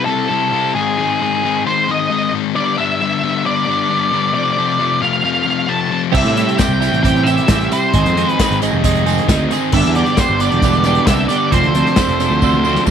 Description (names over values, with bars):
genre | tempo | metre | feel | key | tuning
indie rock | 134 BPM | 4/4 | straight | unclear | A4 = 440 Hz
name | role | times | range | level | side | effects
octave-fuzz lead guitar | melody | 0.0-12.8 s | Ab4 to A5 | -18 LUFS | equal | distortion, slapback echo
crunchy overdriven guitar | riff | 0.0-12.9 s | F2 to E4 | -19 LUFS | left 10 dB | none
twelve-string electric guitar | riff | 6.1-12.9 s | F3 to A4 | -18 LUFS | right 13 dB | analog chorus, slapback echo
fuzz picked electric bass | bass | 6.1-12.9 s | E1 to A2 | -18 LUFS | right 2 dB | overdrive
unplugged drum kit | drums | 6.1-12.9 s | crash cymbal, hi-hat, kick drum, snare drum, toms | -18 LUFS | left 1 dB | none
tambourine | percussion | 6.1-12.9 s | none | -33 LUFS | right 16 dB | none
room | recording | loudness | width
little or no reverb | 1960s-style stereo with parts hard left and right | -13 LUFS | side -8 dB against mid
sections
0.0-12.9 A section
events
drum fill 12.4-12.9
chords
0.0 C; 0.7 Ab; 2.5 G; 4.3 F6; 6.1 C; 7.9 Ab; 9.7 G; 11.5 F6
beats
0.29 | 0.74 1.19 1.64 2.09 | 2.54 2.99 3.44 3.89 | 4.34 4.79 5.24 5.69 | 6.14 6.59 7.04 7.49 | 7.94 8.38 8.83 9.28 | 9.73 10.18 10.63 11.08 | 11.53 11.98 12.43 12.88